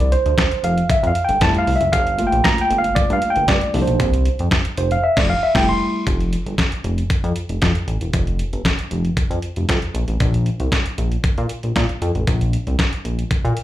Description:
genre	early-eighties boogie funk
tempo	116 BPM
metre	4/4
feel	straight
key	unclear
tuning	A4 = 440 Hz
part	tine electric piano	accompaniment	0.0-6.0 s	F3 to C6	-18 LUFS	equal	overdrive, slapback echo
part	chorused synth bass	bass	0.0-13.5 s	E1 to Bb2	-20 LUFS	equal	none
part	detuned 8-bit digital drum machine	drums	0.0-13.6 s	crash cymbal, hi-hat, kick drum, snare drum	-20 LUFS	equal	none
room	light reverb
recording	live gig heard through the venue's PA, club reverb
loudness	-16 LUFS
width	side -13 dB against mid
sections	0.0-6.1 A section; 6.1-13.6 B section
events	tine electric piano solo 0.0-6.1; band accent 5.0-6.1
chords	0.0 N.C.; 0.6 Fmaj9; 1.9 Gm9; 3.7 C7sus4; 4.8 Fmaj9; 6.1 N.C.; 9.9 Bb5

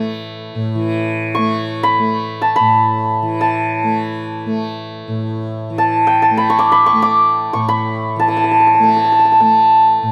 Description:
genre	indian classical, Hindustani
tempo	free time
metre	none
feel	none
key	A major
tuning	A4 = 440 Hz
part	santur	melody	0.0-10.1 s	A4 to D6	-15 LUFS	equal	none
part	tanpura	drone	0.0-10.1 s	A2 to A3	-23 LUFS	equal	none
room	light reverb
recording	none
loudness	-15 LUFS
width	mono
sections	0.7-10.1 A section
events	none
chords	none

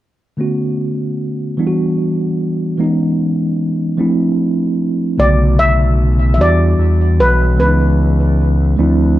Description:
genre	slow six-eight R&B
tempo	50 BPM (dotted quarters)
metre	6/8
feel	straight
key	B minor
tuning	A4 = 440 Hz
part	mellow tine electric piano	accompaniment	0.4-9.2 s	C#3 to F#4	-15 LUFS	right 1 dB	fast stereo tremolo
part	steel pan	melody	5.2-9.2 s	B4 to E5	-17 LUFS	equal	tape echo
part	smooth gliding synth bass	bass	5.2-9.2 s	B1 to E2	-13 LUFS	equal	none
room	small room ambience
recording	none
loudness	-12 LUFS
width	side -14 dB against mid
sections	0.4-5.2 A section; 5.2-9.2 B section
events	none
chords	0.4 Bm9; 1.6 Em9; 2.8 C#m9; 4.0 Dm9; 5.2 Bm9; 6.4 Em9; 7.6 C#m9

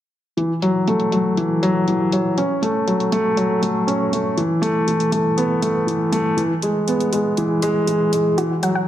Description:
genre	piano and strings electronica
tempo	120 BPM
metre	4/4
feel	straight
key	F# minor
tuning	A4 = 440 Hz
part	warm upright piano	riff	0.4-8.9 s	E3 to C#4	-17 LUFS	equal	tape echo
part	electronic hi-hat	drums	0.4-8.7 s	none	-31 LUFS	left 1 dB	low-pass filter on hats
part	soft round pluck	arpeggios	8.4-8.8 s	F#4 to F#5	-23 LUFS	right 1 dB	chorus, tape echo
room	wet recital hall reverb, RT60 1.7 s, studio ambience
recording	none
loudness	-17 LUFS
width	side -12 dB against mid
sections	0.4-8.9 A section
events	none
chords	0.4 F#m7; 2.4 F#m; 4.4 Asus2; 6.4 E; 8.4 F#7(no3)

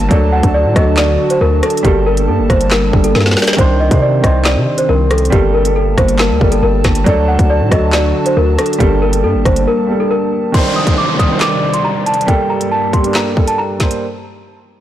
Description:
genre	hip hop, drill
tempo	138 BPM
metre	4/4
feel	half-time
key	G harmonic minor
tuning	A4 = 442 Hz
part	small celesta	melody	0.0-14.0 s	G4 to Eb6	-17 LUFS	left 1 dB	low-pass filter, digital delay
part	dark baby grand piano	accompaniment	0.0-14.0 s	Eb3 to C5	-19 LUFS	right 3 dB	low-pass filter
part	dark analog pad	sustained chords	0.0-14.0 s	G2 to A5	-20 LUFS	equal	chorus
part	distorted 808-style bass	bass	0.0-9.7 s	G1 to C3	-15 LUFS	equal	distortion
part	drill drum kit	drums	0.1-14.0 s	crash cymbal, handclaps, hi-hat, kick drum, rim click, snare drum	-15 LUFS	equal	soft clipping on snare
part	downlifter	sound effects	10.5-14.0 s	none	-22 LUFS	left 1 dB	none
room	digital ambience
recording	blown-out, overdriven recording, overdrive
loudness	-10 LUFS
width	side -12 dB against mid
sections	0.0-10.5 A section; 10.5-14.0 B section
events	drum fill 3.1-3.6; break 9.7-10.5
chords	0.1 D; 1.8 Gmadd9; 3.6 Cmadd9; 5.3 Gmadd9; 7.1 D; 8.8 Gmadd9; 10.5 Cmadd9; 12.3 Gmadd9

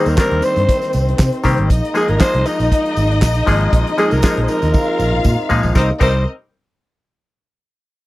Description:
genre	disco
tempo	118 BPM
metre	4/4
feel	straight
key	C minor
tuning	A4 = 440 Hz
part	growling alto saxophone	melody	0.0-6.3 s	Eb4 to C5	-19 LUFS	equal	none
part	warm studio string section	second line	0.0-6.2 s	C4 to F5	-22 LUFS	left 2 dB	none
part	clav	accompaniment	0.0-6.2 s	Eb3 to Bb4	-21 LUFS	left 2 dB	none
part	mellow French horn section	sustained chords	0.0-6.0 s	C3 to Eb4	-24 LUFS	equal	none
part	fingered electric bass	bass	0.1-6.2 s	Ab1 to C3	-17 LUFS	equal	none
part	damped 70s drum kit	drums	0.1-6.1 s	crash cymbal, handclaps, hi-hat, kick drum, snare drum, toms	-16 LUFS	equal	none
part	tambourine	percussion	0.1-6.2 s	none	-36 LUFS	right 5 dB	none
room	little or no reverb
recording	dry, close 1970s-style studio recording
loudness	-13 LUFS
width	side -18 dB against mid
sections	0.0-5.8 A section; 5.8-7.8 B section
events	drum fill 4.7-5.8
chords	0.0 Cm7; 1.7 Bb7sus4; 5.8 Cm7

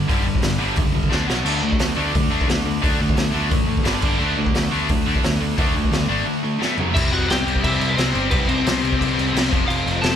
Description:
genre	punk rock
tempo	175 BPM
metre	4/4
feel	straight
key	unclear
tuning	A4 = 440 Hz
part	cranked stack guitar	riff	0.0-10.2 s	F2 to D4	-25 LUFS	left 11 dB	overdrive
part	distorted electric guitar	riff	0.0-10.2 s	F2 to D4	-26 LUFS	equal	overdrive
part	tight distorted guitar	riff	0.0-6.9 s	F#2 to D4	-26 LUFS	right 13 dB	distortion
part	picked electric bass	bass	0.0-10.2 s	F1 to D2	-25 LUFS	equal	none
part	raw garage drum kit	drums	0.1-10.1 s	crash cymbal, hi-hat, kick drum, snare drum, splash cymbal, toms	-21 LUFS	equal	none
part	lightly driven lead guitar	melody	6.9-10.2 s	B3 to A5	-24 LUFS	left 1 dB	none
room	little or no reverb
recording	lossy compression artefacts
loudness	-17 LUFS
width	side -9 dB against mid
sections	0.0-6.9 A section; 6.9-10.2 B section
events	drum fill 1.1-1.5, 6.6-6.9; break 6.3-6.9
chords	0.0 G5; 1.1 D5; 1.3 B5; 1.5 D5; 3.9 G5; 4.2 D5; 6.6 A5; 6.8 F#5; 6.9 C; 9.5 F

